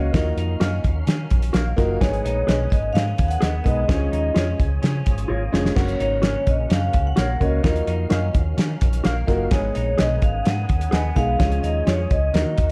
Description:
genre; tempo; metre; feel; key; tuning
uptempo 1960s-style soul; 128 BPM; 4/4; straight; Eb minor; A4 = 440 Hz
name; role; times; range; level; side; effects
vibraphone with medium hard mallets; melody; 0.0-12.7 s; Db5 to Ab5; -28 LUFS; equal; none
warm upright piano; accompaniment; 0.0-12.7 s; Ab3 to Eb5; -29 LUFS; equal; none
percussive tonewheel organ; sustained chords; 0.0-12.7 s; Db3 to F5; -39 LUFS; equal; overdrive, chorus vibrato, slow rotary speaker
semi-hollow electric guitar; riff; 0.0-12.7 s; Bb3 to Ab4; -38 LUFS; equal; spring reverb
fingered electric bass; bass; 0.0-12.7 s; F1 to Eb3; -26 LUFS; equal; none
cloth-damped thuddy drum kit; drums; 0.1-12.7 s; crash cymbal, hi-hat, kick drum, snare drum; -24 LUFS; equal; none
mellow electric guitar; stabs; 0.6-12.0 s; F4 to F5; -33 LUFS; equal; tape echo
room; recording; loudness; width
little or no reverb; none; -21 LUFS; mono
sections
0.0-12.7 A section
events
drum fill 5.3-5.8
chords
0.1 Ebmadd9; 2.0 Abm; 3.9 Db; 5.8 Gb; 7.6 Ebmadd9; 9.5 Abm; 11.4 Db

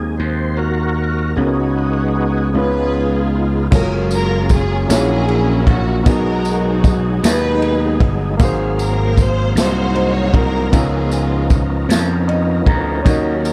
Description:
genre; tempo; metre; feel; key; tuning
slow gospel; 51 BPM (dotted quarters); 6/8; straight; unclear; A4 = 438 Hz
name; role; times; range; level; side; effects
warm concert grand piano; accompaniment; 0.0-13.5 s; G#2 to A#5; -24 LUFS; equal; none
overdriven tonewheel organ; sustained chords; 0.0-13.5 s; E#3 to E#5; -26 LUFS; equal; slow rotary speaker, chorus vibrato
gritty slap bass; bass; 0.0-13.5 s; F#1 to E#2; -21 LUFS; equal; overdrive
warm studio string section; melody; 2.6-13.5 s; B3 to C#5; -24 LUFS; equal; none
swinging big-band drum kit; drums; 3.7-13.5 s; crash cymbal, kick drum, ride cymbal, snare drum; -17 LUFS; equal; none
tambourine; percussion; 3.7-13.5 s; none; -33 LUFS; equal; none
room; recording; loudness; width
light reverb, small room ambience; dark, warm production; -16 LUFS; mono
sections
0.0-3.7 A section; 3.7-13.5 B section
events
tonewheel organ solo 0.0-3.7; grand piano fill 11.9-13.1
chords
0.0 G#7/D#; 1.4 C#7sus4; 2.5 C#7; 3.7 F#maj9; 4.9 F#7/A#; 6.1 B6; 8.4 G#13; 10.7 C#13

